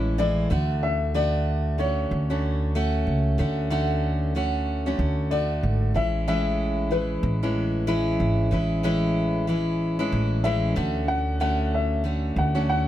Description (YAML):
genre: acoustic pop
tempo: 94 BPM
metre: 4/4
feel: swing 60% on 16ths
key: unclear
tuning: A4 = 445 Hz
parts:
  - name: picked steel-string acoustic guitar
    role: accompaniment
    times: 0.0-12.9 s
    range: A2 to F#4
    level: -25 LUFS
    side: equal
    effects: none
  - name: upright bass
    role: bass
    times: 0.0-12.9 s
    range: G#1 to D2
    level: -26 LUFS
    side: equal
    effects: none
  - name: dark upright piano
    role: melody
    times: 0.2-12.9 s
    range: B4 to F#5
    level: -28 LUFS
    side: left 2 dB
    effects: none
room: little or no reverb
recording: close, detailed microphones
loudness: -22 LUFS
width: side -12 dB against mid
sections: 0.0-12.9 A section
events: none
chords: 0.0 Amaj7; 0.5 Dmaj7; 6.0 Amaj7; 10.8 Dmaj7